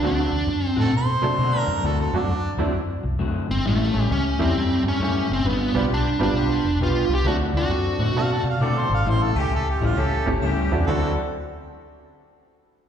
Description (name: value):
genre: electric blues shuffle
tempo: 133 BPM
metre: 4/4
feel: swing 65% on 8ths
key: D mixolydian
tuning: A4 = 440 Hz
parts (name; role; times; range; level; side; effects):
- dark smooth lead guitar; melody; 0.0-8.4 s; A3 to G4; -24 LUFS; right 1 dB; overdrive, slapback echo
- honky-tonk upright piano; accompaniment; 0.0-11.1 s; F#3 to A4; -28 LUFS; right 5 dB; slapback echo
- electric guitar through a small old amp; riff; 0.0-11.1 s; A2 to B4; -29 LUFS; left 5 dB; wide subtle chorus, slapback echo
- vintage muted fingered electric bass; bass; 0.0-11.2 s; F1 to C3; -23 LUFS; equal; none
- warm harmonica; second line; 0.8-2.6, 8.2-11.1 s; D4 to A5; -27 LUFS; right 1 dB; overdrive, slapback echo
- warm horn section; stabs; 3.9-11.2 s; A3 to A4; -30 LUFS; left 3 dB; slapback echo
room: light reverb, studio ambience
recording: live gig heard through the venue's PA, recital hall reverb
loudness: -20 LUFS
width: side -8 dB against mid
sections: 0.0-10.9 A section; 10.9-12.7 B section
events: none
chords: 0.0 D7; 3.6 A7; 5.5 G7; 7.3 D7; 9.1 A7; 10.9 D9